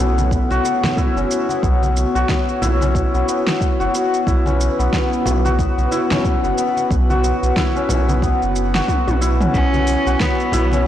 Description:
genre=organic downtempo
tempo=91 BPM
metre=4/4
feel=swing 58% on 16ths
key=unclear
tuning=A4 = 441 Hz
part: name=airy breathy pad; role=sustained chords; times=0.0-10.9 s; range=B3 to C#5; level=-23 LUFS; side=equal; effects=chorus, sidechain pumping
part: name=santur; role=arpeggios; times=0.0-10.9 s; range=A3 to F#4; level=-20 LUFS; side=left 2 dB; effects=vintage 12-bit sampler grit, digital delay
part: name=warm sub bass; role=bass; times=0.0-10.9 s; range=F#1 to B1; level=-19 LUFS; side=right 1 dB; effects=none
part: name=deep house drum kit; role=drums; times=0.2-10.8 s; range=hi-hat, shaker, snare drum, toms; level=-25 LUFS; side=right 1 dB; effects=overdrive
part: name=congas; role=percussion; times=0.2-10.8 s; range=none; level=-28 LUFS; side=equal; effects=none
part: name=electronic kick drum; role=drums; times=0.3-10.4 s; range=none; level=-20 LUFS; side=right 1 dB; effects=none
part: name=warm cello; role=melody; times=9.5-10.9 s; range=B3 to C#4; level=-20 LUFS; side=right 1 dB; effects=digital delay
room=moderate lush hall reverb, RT60 1.9 s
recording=blown-out, overdriven recording, overdrive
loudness=-15 LUFS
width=side -11 dB against mid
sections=0.0-10.9 A section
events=drum fill 8.9-9.5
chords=0.0 Bsus2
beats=0.31 0.97 | 1.63 2.29 2.95 3.61 | 4.27 4.93 5.59 6.25 | 6.91 7.57 8.22 8.88 | 9.54 10.20 10.86

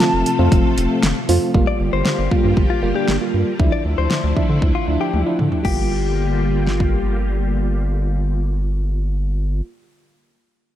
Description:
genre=synth-pop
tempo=117 BPM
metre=4/4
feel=straight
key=G dorian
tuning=A4 = 441 Hz
part: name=mellow hollow silver concert flute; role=melody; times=0.0-1.0 s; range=A5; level=-24 LUFS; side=equal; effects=tape echo
part: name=FM electric piano with tremolo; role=accompaniment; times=0.0-9.6 s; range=F3 to F4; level=-23 LUFS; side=right 2 dB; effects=phaser, low-pass filter
part: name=string machine, full ensemble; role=sustained chords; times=0.0-9.6 s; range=C3 to A4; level=-24 LUFS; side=left 1 dB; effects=ensemble chorus, low-pass filter
part: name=pop drum kit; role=drums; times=0.0-6.9 s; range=crash cymbal, hi-hat, kick drum, snare drum, toms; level=-20 LUFS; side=equal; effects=none
part: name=round analog bass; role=bass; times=0.1-9.6 s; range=F1 to D3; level=-20 LUFS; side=equal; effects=none
part: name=direct-recorded clean electric guitar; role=second line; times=1.7-7.1 s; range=F4 to D5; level=-26 LUFS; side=left 10 dB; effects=tape echo
room=light reverb, digital ambience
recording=none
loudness=-16 LUFS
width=side -12 dB against mid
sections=0.0-1.5 A section; 1.5-5.6 B section; 5.6-9.8 C section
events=drum fill 5.1-5.6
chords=0.0 F; 1.5 Gm7; 3.6 Dmadd9; 5.6 Gm7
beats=0.01 0.52 1.03 | 1.54 2.06 2.57 3.08 | 3.60 4.11 4.62 5.13 | 5.65 6.16 6.67 7.19 | 7.70 8.21 8.72 9.24

